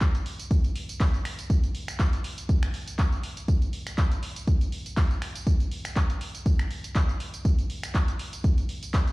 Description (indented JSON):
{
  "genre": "house",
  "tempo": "121 BPM",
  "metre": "4/4",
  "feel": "swing 55% on 16ths",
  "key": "none",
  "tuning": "none",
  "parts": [
    { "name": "electronic kick drum", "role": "drums", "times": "0.0-9.0 s", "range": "none", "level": "-23 LUFS", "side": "equal", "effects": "overdrive" },
    { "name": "punchy analog drum machine", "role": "drums", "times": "0.0-9.1 s", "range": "finger snaps, handclaps, hi-hat, tambourine", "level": "-35 LUFS", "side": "equal", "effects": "none" }
  ],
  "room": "little or no reverb",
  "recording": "played on a big sound system in a bare room, large studio reverb",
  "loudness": "-24 LUFS",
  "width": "side -22 dB against mid",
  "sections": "0.0-9.1 A section",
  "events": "none",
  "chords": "none"
}